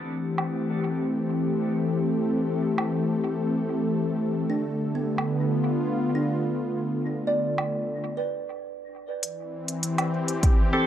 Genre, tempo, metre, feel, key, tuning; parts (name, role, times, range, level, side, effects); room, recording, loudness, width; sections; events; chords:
ambient dub; 100 BPM; 4/4; straight; A minor; A4 = 440 Hz
warm analog pad; sustained chords; 0.0-10.9 s; D3 to A4; -25 LUFS; left 1 dB; chorus
kalimba; arpeggios; 0.0-0.5, 4.5-10.4 s; B3 to D5; -32 LUFS; right 2 dB; dub echo
electronic woodblock and hi-hat; drums; 0.4-10.6 s; -30 LUFS; right 1 dB; overdrive, low-pass filter on hats, low-pass filter on snare, low-pass filter on perc, dub echo
electronic kick drum; drums; 10.4-10.6 s; -19 LUFS; equal; overdrive
bright tonewheel organ; stabs; 10.7-10.9 s; C4 to A4; -32 LUFS; equal; slow rotary speaker, dub echo
light reverb; -24 LUFS; side -10 dB against mid
0.0-9.2 A section; 9.2-10.9 B section
filter sweep on drum 0.0-9.2; break 8.0-9.2
0.0 Am7; 4.4 Bm7b5; 9.2 Am7 (rootless)